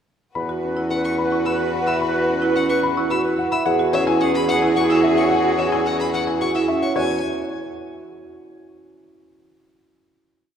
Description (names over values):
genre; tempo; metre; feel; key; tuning
classical, minimalist pattern music; 109 BPM; 3/4; straight; E major; A4 = 440 Hz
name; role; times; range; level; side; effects
warm concert grand piano; melody; 0.4-7.2 s; G#4 to C#6; -25 LUFS; left 4 dB; none
bright clarinet; second line; 0.4-6.7 s; G#4 to B4; -26 LUFS; right 1 dB; none
warm symphonic violin section; sustained chords; 0.4-6.8 s; F#4 to B4; -27 LUFS; left 3 dB; none
mellow bassoon; bass; 0.4-7.2 s; E2; -25 LUFS; left 1 dB; none
marimba with medium hard mallets; arpeggios; 0.5-7.2 s; C#4 to E5; -22 LUFS; right 4 dB; none
rich violin; arpeggios; 0.9-7.2 s; E5 to E6; -29 LUFS; left 3 dB; none
room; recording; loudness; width
wet church reverb, RT60 2.9 s; recorded in a church or concert hall; -17 LUFS; side -8 dB against mid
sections
0.4-7.0 A section; 7.0-8.6 final chord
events
none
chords
0.4 Bsus4/E; 3.7 Eadd9